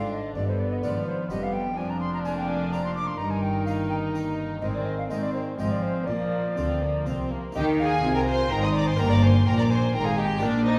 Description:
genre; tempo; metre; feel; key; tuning
classical, baroque-style concerto movement with solo episodes; 126 BPM; 3/4; straight; Eb major; A4 = 439 Hz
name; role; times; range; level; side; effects
mellow alto recorder; melody; 0.0-10.8 s; Bb4 to D6; -34 LUFS; equal; none
rich chamber violin section; melody; 0.0-10.8 s; F4 to Eb6; -40 LUFS; equal; none
warm chamber violin section; second line; 0.0-10.8 s; Bb3 to Eb5; -33 LUFS; equal; none
dark chamber viola section; accompaniment; 0.0-10.8 s; D3 to F4; -33 LUFS; equal; none
harpsichord; accompaniment; 0.0-10.8 s; F2 to C5; -38 LUFS; equal; none
rich chamber cello section; bass; 0.0-10.8 s; F2 to Ab3; -31 LUFS; equal; none
rich chamber double bass section; bass; 0.0-10.8 s; F1 to Ab2; -32 LUFS; equal; none
room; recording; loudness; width
wet recital hall reverb, RT60 1.5 s; heard from further back in the room; -25 LUFS; mono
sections
0.0-7.6 A section; 7.6-10.8 B section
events
none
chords
0.4 G7; 1.8 Bb/F; 3.2 Eb/G; 4.6 Ab; 5.6 Fm/Ab; 6.1 Bb; 7.6 Eb5; 9.0 Eb/G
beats
| 0.35 0.83 1.30 | 1.78 2.25 2.72 | 3.20 3.67 4.15 | 4.62 5.10 5.58 | 6.07 6.57 7.06 | 7.55 8.04 8.52 | 8.99 9.47 9.95 | 10.42

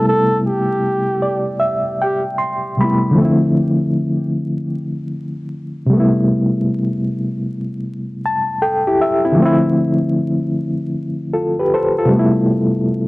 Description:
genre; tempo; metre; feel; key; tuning
hip hop; 77 BPM; 4/4; swing 60% on 16ths; D dorian; A4 = 441 Hz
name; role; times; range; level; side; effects
warm flugelhorn; melody; 0.0-2.2 s; G4 to A4; -19 LUFS; equal; low-pass filter, tape echo
overdriven reed electric piano; accompaniment; 0.0-13.1 s; C3 to C6; -15 LUFS; equal; fast tremolo, cassette tape, low-pass filter
room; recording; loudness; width
moderate studio reverb, RT60 0.5 s; dry, gritty hardware recording, vinyl crackle; -15 LUFS; side -21 dB against mid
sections
0.0-13.1 A section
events
reed electric piano fill 7.8-9.4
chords
0.0 Am7; 3.2 Dm7; 5.9 Am7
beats
| 0.06 0.83 1.61 2.39 | 3.17 3.95 4.73 5.51 | 6.29 7.07 7.85 8.63 | 9.41 10.19 10.96 11.74 | 12.52

